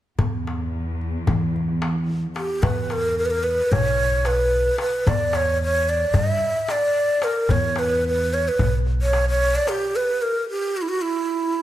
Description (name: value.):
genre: Turkish makam ensemble.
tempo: 222 BPM (eighths).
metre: 9/8.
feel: straight.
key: E makam nikriz.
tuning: A4 = 440 Hz.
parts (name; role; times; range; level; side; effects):
upright bass; bass; 0.2-9.6 s; B1 to E3; -24 LUFS; equal; none.
warm studio cello section; drone; 0.2-2.7 s; E2; -32 LUFS; left 2 dB; none.
darbuka; percussion; 0.2-9.8 s; none; -25 LUFS; left 1 dB; none.
breathy ney; melody; 2.4-11.6 s; E4 to E5; -20 LUFS; right 1 dB; none.
room: moderate recital hall reverb, RT60 1.6 s.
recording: none.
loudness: -19 LUFS.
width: side -13 dB against mid.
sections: 0.2-2.6 A section; 2.6-11.6 B section.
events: break 9.9-11.6.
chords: none.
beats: | 0.19 0.46 0.73 1.00 1.28 1.55 1.82 2.09 2.36 | 2.63 2.90 3.17 3.44 3.71 3.99 4.26 4.53 4.80 | 5.07 5.34 5.61 5.88 6.15 6.42 6.69 6.96 7.23 | 7.50 7.77 8.04 8.31 8.58 8.85 9.12 9.39 9.66 | 9.93 10.20 10.47 10.74 11.01 11.28 11.55.